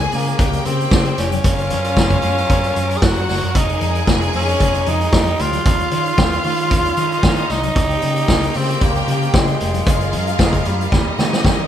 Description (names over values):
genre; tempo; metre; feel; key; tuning
disco; 114 BPM; 4/4; straight; unclear; A4 = 440 Hz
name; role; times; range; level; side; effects
clear symphonic string section; second line; 0.0-11.7 s; Eb4 to Ab5; -25 LUFS; left 1 dB; none
clear studio string section; sustained chords; 0.0-11.7 s; Db3 to Bb4; -28 LUFS; left 2 dB; none
fingered electric bass; bass; 0.0-11.6 s; F1 to Eb3; -22 LUFS; equal; none
vintage drum kit; drums; 0.0-11.6 s; hi-hat, kick drum, snare drum; -18 LUFS; equal; none
raspy tenor saxophone; melody; 0.1-11.5 s; G3 to Ab4; -21 LUFS; right 1 dB; none
congas; percussion; 0.1-11.6 s; none; -31 LUFS; left 5 dB; none
cowbell; percussion; 0.4-11.6 s; none; -34 LUFS; right 3 dB; none
room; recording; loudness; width
moderate large studio reverb, RT60 1.1 s; band playing live in one room; -14 LUFS; side -10 dB against mid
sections
0.0-11.7 A section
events
drum fill 10.9-11.7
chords
0.0 Db6; 1.4 Gbmaj9; 3.5 Fm11; 5.7 Eb9sus4; 7.8 Db6; 9.9 Gbmaj9; 10.9 Eb9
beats
0.39 0.91 | 1.44 1.97 2.50 3.02 | 3.55 4.08 4.60 5.13 | 5.66 6.18 6.71 7.24 | 7.76 8.29 8.81 9.34 | 9.87 10.39 10.92 11.45